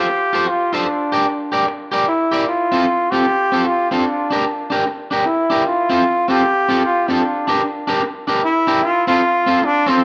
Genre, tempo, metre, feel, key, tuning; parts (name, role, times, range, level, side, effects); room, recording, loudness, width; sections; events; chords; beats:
ska; 151 BPM; 4/4; swing 62% on 8ths; F major; A4 = 440 Hz
bright trombone; melody; 0.0-10.0 s; C4 to G4; -19 LUFS; equal; analog delay, plate reverb
electric guitar at the edge of break-up; accompaniment; 0.0-10.0 s; C4 to D5; -21 LUFS; equal; spring reverb, plate reverb
wet club ambience, RT60 0.5 s; -17 LUFS; mono
0.0-10.0 A section
0.0 F; 0.9 Gm; 2.5 F; 4.1 Gm; 5.7 F; 7.2 Gm; 8.8 F
0.09 0.49 | 0.89 1.28 1.68 2.08 | 2.48 2.87 3.27 3.67 | 4.07 4.46 4.86 5.26 | 5.66 6.05 6.45 6.85 | 7.25 7.64 8.04 8.44 | 8.84 9.23 9.63 10.03